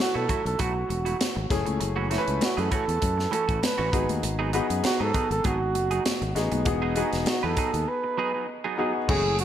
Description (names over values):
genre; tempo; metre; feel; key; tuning
polished 1980s jazz-funk pop; 99 BPM; 4/4; swing 54% on 16ths; unclear; A4 = 440 Hz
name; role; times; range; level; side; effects
breathy flugelhorn; melody; 0.0-9.4 s; F#4 to B4; -28 LUFS; right 3 dB; none
warm grand piano; accompaniment; 0.0-9.4 s; A3 to B4; -30 LUFS; left 3 dB; wide subtle chorus
semi-hollow electric guitar; riff; 0.0-9.4 s; E3 to B4; -32 LUFS; right 6 dB; analog chorus
fingered electric bass; bass; 0.0-9.4 s; E1 to B2; -29 LUFS; left 1 dB; none
tight funk drum kit; drums; 0.0-9.4 s; crash cymbal, hi-hat, kick drum, snare drum; -29 LUFS; equal; gated reverb
congas; percussion; 0.3-9.4 s; none; -37 LUFS; left 8 dB; none
room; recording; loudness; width
moderate plate reverb, RT60 2.2 s; bright 1980s-style digital production; -23 LUFS; side -10 dB against mid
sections
0.0-9.1 A section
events
break 7.9-9.1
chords
0.0 B7sus4; 1.5 F#m7; 3.9 G#m7; 6.7 Emaj9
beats
0.60 1.20 | 1.81 2.42 3.02 3.63 | 4.24 4.84 5.45 6.05 | 6.66 7.27 7.88 8.48 | 9.09